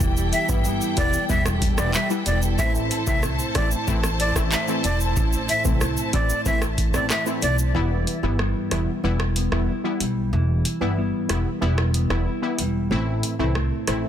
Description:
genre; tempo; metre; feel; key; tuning
dancehall; 93 BPM; 4/4; straight; unclear; A4 = 439 Hz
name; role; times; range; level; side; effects
warm studio string section; sustained chords; 0.0-7.7 s; E4 to A5; -30 LUFS; left 1 dB; sidechain pumping
mellow electric guitar; arpeggios; 0.0-14.1 s; A2 to E4; -28 LUFS; equal; spring reverb
upright bass; bass; 0.0-14.0 s; E1 to C2; -25 LUFS; equal; none
booming analog drum machine; drums; 0.0-14.0 s; handclaps, hi-hat, kick drum, rim click, shaker; -25 LUFS; equal; soft clipping on snare
egg shaker; percussion; 0.0-7.7 s; none; -36 LUFS; equal; none
breathy bright jazz flute; melody; 0.3-7.6 s; D5 to E5; -27 LUFS; equal; ping-pong delay
synth brass stab; accompaniment; 0.5-14.1 s; E3 to E4; -28 LUFS; left 1 dB; chorus
room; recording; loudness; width
small room ambience; dense, heavily limited modern master; -20 LUFS; side -10 dB against mid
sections
0.0-7.7 A section; 7.7-14.1 B section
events
kick muted 7.7-14.1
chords
0.0 Em; 2.6 Am; 7.7 Em; 12.9 Am

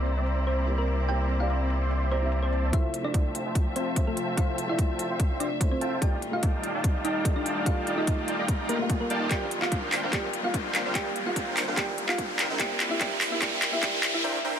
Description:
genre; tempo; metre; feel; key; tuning
future bass; 146 BPM; 4/4; half-time; F major; A4 = 445 Hz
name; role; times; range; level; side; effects
felt-muted upright piano; accompaniment; 0.0-14.6 s; A3 to F5; -36 LUFS; right 2 dB; sidechain pumping, digital delay
bright symphonic string section; sustained chords; 0.0-14.2 s; C3 to E5; -38 LUFS; left 3 dB; sidechain pumping, low-pass filter
dense compressed supersaw; riff; 0.0-14.6 s; C4 to C6; -32 LUFS; right 1 dB; sidechain pumping, low-pass filter
saturated sub bass; bass; 0.0-14.2 s; D1 to C2; -33 LUFS; equal; tube saturation, sidechain pumping, high-pass filter
trap drum kit; drums; 0.1-14.1 s; handclaps, hi-hat; -30 LUFS; left 1 dB; low-pass filter on hats, low-pass filter on snare
thumb-piano-like synth pluck; melody; 0.5-14.2 s; A3 to G5; -33 LUFS; left 1 dB; chorus, sidechain pumping, ping-pong delay
electronic kick drum; drums; 2.7-13.9 s; none; -27 LUFS; equal; none
riser; sound effects; 6.1-14.2 s; none; -34 LUFS; right 1 dB; none
room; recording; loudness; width
light reverb, digital ambience; high-pass filter; -24 LUFS; side -8 dB against mid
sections
0.0-2.7 A section; 2.7-14.6 B section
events
build-up 2.7-14.6; filter sweep on supersaw synth 2.7-14.6; filter sweep 2.7-14.6; riser 6.1-14.2; drum fill 9.3-14.2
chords
0.0 C7; 2.7 Fmaj7; 6.0 Ebmaj9#11; 9.3 Bb6/D; 12.4 C7

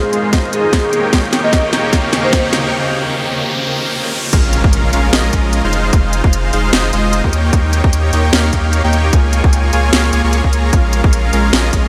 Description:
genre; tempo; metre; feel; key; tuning
future bass; 150 BPM; 4/4; swing 56% on 16ths, half-time; unclear; A4 = 439 Hz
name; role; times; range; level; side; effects
vibraphone with soft mallets; melody; 0.0-2.4 s; Ab4 to Eb5; -22 LUFS; equal; sidechain pumping, diffuse ambient delay
shimmering ambient pad; sustained chords; 0.0-4.3 s; Eb2 to Ab4; -30 LUFS; equal; chorus, built-in reverb, phaser, sidechain pumping
dense compressed supersaw; riff; 0.0-11.9 s; Ab3 to Db6; -19 LUFS; equal; sidechain pumping, low-pass filter, tape echo
riser, swell and impact; sound effects; 1.6-5.9 s; none; -27 LUFS; equal; none
trap drum kit; drums; 0.1-11.8 s; crash cymbal, hi-hat, snare drum; -22 LUFS; equal; none
electronic kick drum; drums; 0.3-11.8 s; none; -15 LUFS; equal; none
saturated sub bass; bass; 4.3-11.9 s; F1 to Eb2; -18 LUFS; equal; sidechain pumping
room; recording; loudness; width
wet huge ambient reverb, RT60 7.9 s; dreamy mix soaked in reverb; -14 LUFS; mono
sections
0.0-4.3 A section; 4.3-11.9 B section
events
build-up 0.0-4.3; drum fill 0.0-2.7; filter sweep on supersaw synth 0.0-4.3; filter sweep on vibraphone 0.0-4.3; riser 1.6-4.3; break 2.7-4.3; swell 3.5-4.3; drop 4.3-11.9; impact 4.3-5.9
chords
0.0 Fm7; 0.9 Eb7; 2.7 Db6; 4.3 Bbm7; 5.7 Fm7; 7.3 Eb7; 9.1 Db6; 10.7 Bbm7

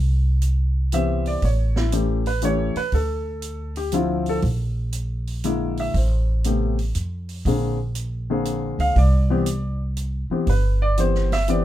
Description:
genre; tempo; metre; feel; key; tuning
jazz piano trio; 119 BPM; 3/4; swing 68% on 8ths; C major; A4 = 443 Hz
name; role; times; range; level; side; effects
upright bass; bass; 0.0-11.6 s; G1 to F2; -21 LUFS; equal; none
open jazz drum kit; drums; 0.4-11.6 s; hi-hat, kick drum, snare drum; -32 LUFS; right 3 dB; none
warm baby grand piano; melody; 0.9-11.6 s; C3 to F5; -23 LUFS; left 2 dB; none
room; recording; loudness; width
little or no reverb; close, detailed microphones; -20 LUFS; side -13 dB against mid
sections
0.0-11.6 A section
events
none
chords
0.0 Cmaj7; 1.4 A7; 2.9 Dm9; 4.4 Bb7#11; 5.9 Am; 7.4 Bb9; 9.0 Cmaj7

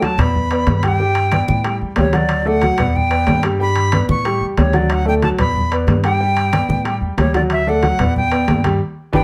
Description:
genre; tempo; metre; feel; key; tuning
latin, salsa; 184 BPM; 4/4; straight; D major; A4 = 440 Hz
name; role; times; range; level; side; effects
bright silver concert flute; melody; 0.0-9.2 s; C#5 to C#6; -23 LUFS; equal; plate reverb
warm grand piano; accompaniment; 0.0-9.2 s; F#3 to G5; -22 LUFS; equal; none
congas; percussion; 0.0-9.2 s; none; -24 LUFS; equal; none
timbales; percussion; 0.0-9.2 s; none; -26 LUFS; equal; none
upright bass; bass; 0.2-9.2 s; G1 to A2; -22 LUFS; equal; none
room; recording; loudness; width
moderate studio reverb, RT60 0.8 s; none; -16 LUFS; mono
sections
0.0-9.2 A section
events
band accent 8.8-9.2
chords
0.3 Em7; 1.0 G; 1.6 A5; 2.3 D; 2.9 Em7; 3.6 G; 4.2 A5; 4.9 D; 5.6 Em7; 6.2 G; 6.9 A5; 7.5 D; 8.2 Em7

